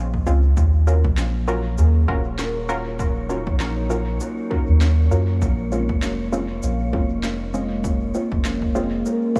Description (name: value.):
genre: ambient dub.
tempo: 99 BPM.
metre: 4/4.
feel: swing 57% on 16ths.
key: Bb minor.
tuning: A4 = 439 Hz.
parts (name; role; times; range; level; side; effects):
warbly tape-like pad; sustained chords; 0.0-9.4 s; Gb3 to Bb4; -30 LUFS; equal; chorus, built-in reverb.
concert harp; arpeggios; 0.0-9.4 s; Eb4 to F5; -37 LUFS; equal; vintage 12-bit sampler grit, dub echo.
soft dub sub bass; bass; 0.0-9.0 s; Eb1 to Gb2; -22 LUFS; equal; none.
electronic kick drum; drums; 0.1-9.4 s; none; -28 LUFS; equal; overdrive.
filtered dub chord stab; stabs; 0.3-9.4 s; Ab3 to Bb4; -30 LUFS; equal; chorus, dub echo.
electronic shaker and snare drum; drums; 0.3-9.4 s; none; -36 LUFS; equal; dub echo.
wind-like tuned noise texture; texture; 1.3-9.4 s; Db5; -41 LUFS; equal; built-in reverb.
room: light reverb, digital ambience.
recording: small room ambience.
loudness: -21 LUFS.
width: mono.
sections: 0.0-9.4 A section.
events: none.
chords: 0.0 Bbm7; 0.6 Ebm7; 5.4 Bbm7.